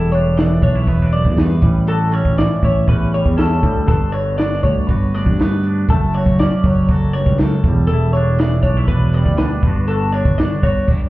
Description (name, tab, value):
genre	math rock and midwest emo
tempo	120 BPM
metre	4/4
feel	straight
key	G lydian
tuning	A4 = 441 Hz
part	twangy electric guitar	accompaniment	0.0-11.1 s	D2 to F#4	-22 LUFS	right 3 dB	none
part	twelve-string electric guitar	arpeggios	0.0-10.9 s	A4 to D5	-22 LUFS	left 2 dB	spring reverb
part	overdriven picked electric bass	bass	0.0-10.9 s	E1 to G2	-16 LUFS	equal	none
part	compact cocktail drum kit	drums	0.1-11.0 s	crash cymbal, hi-hat, kick drum, snare drum	-18 LUFS	equal	none
room	light reverb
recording	heard muffled through a wall, club reverb, EQ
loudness	-13 LUFS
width	side -17 dB against mid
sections	0.0-11.1 A section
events	none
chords	0.0 Em7; 1.6 A7; 3.9 Gmaj7; 5.9 F#m; 7.6 Em7; 9.6 Gmaj7